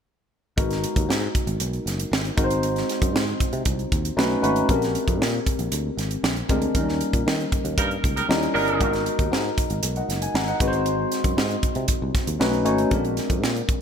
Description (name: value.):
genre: polished 1980s jazz-funk pop.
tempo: 117 BPM.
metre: 4/4.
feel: straight.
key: unclear.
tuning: A4 = 440 Hz.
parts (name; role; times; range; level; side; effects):
tine electric piano; accompaniment; 0.6-13.8 s; F#3 to A#5; -24 LUFS; left 1 dB; lush chorus.
sustaining fretless electric bass; bass; 0.6-13.6 s; F#1 to D#3; -28 LUFS; equal; none.
crisp fusion drum kit; drums; 0.6-13.8 s; hi-hat, kick drum, snare drum; -25 LUFS; right 1 dB; none.
warm horn section; second line; 7.8-8.9 s; F#3 to A#4; -27 LUFS; right 4 dB; none.
room: moderate plate reverb, RT60 2.0 s.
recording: bright 1980s-style digital production.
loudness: -21 LUFS.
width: side -7 dB against mid.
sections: 0.6-13.8 A section.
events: band accent 6.7-8.8.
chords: 0.6 G#m9; 2.4 G#7; 4.2 B9; 4.7 A#13; 6.7 D#7; 8.3 D#7b9; 8.8 G#m9; 10.6 G#7; 12.4 B9; 12.9 A#13.